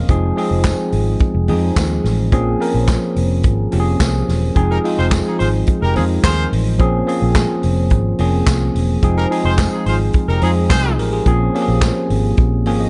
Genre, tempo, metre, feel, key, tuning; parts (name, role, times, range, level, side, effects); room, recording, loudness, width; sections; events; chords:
disco; 107 BPM; 4/4; straight; A4 = 441 Hz
bell-like tine electric piano; accompaniment; 0.0-12.9 s; F3 to F5; -21 LUFS; equal; phaser
vintage muted fingered electric bass; bass; 0.0-12.9 s; Fb1 to F2; -20 LUFS; equal
vintage drum kit; drums; 0.1-12.8 s; handclaps, hi-hat, kick drum, snare drum; -21 LUFS; equal
tambourine; percussion; 0.6-11.9 s; -38 LUFS; equal
clear horn section; stabs; 4.7-10.9 s; Eb4 to C5; -25 LUFS; equal
small room ambience; dark, warm production, nothing above 10.6 kHz; -16 LUFS; mono
0.0-12.9 A section
tine electric piano fill 12.4-12.9
0.1 Fm7; 2.3 Bbm9; 4.6 Fm7; 6.8 Bbm9; 9.0 Fm7; 11.3 Bbm9